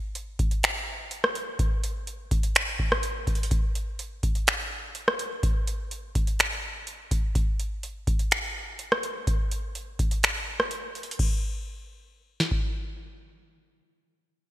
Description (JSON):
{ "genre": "hip hop", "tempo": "125 BPM", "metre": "4/4", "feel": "half-time", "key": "none", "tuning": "none", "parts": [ { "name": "booming analog drum machine", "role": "drums", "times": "0.2-12.6 s", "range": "crash cymbal, finger snaps, hi-hat, kick drum, rim click, snare drum", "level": "-25 LUFS", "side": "equal", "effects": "none" } ], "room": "light reverb", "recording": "bright 1980s-style digital production", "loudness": "-25 LUFS", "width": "side -14 dB against mid", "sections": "0.0-11.2 A section; 11.2-14.5 B section", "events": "kick muted 10.2-11.2", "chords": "none", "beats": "0.15 0.63 1.11 | 1.59 2.07 2.55 3.03 | 3.51 3.99 4.47 4.95 | 5.43 5.91 6.39 6.87 | 7.35 7.83 8.31 8.79 | 9.27 9.75 10.23 10.71 | 11.19 11.67 12.15" }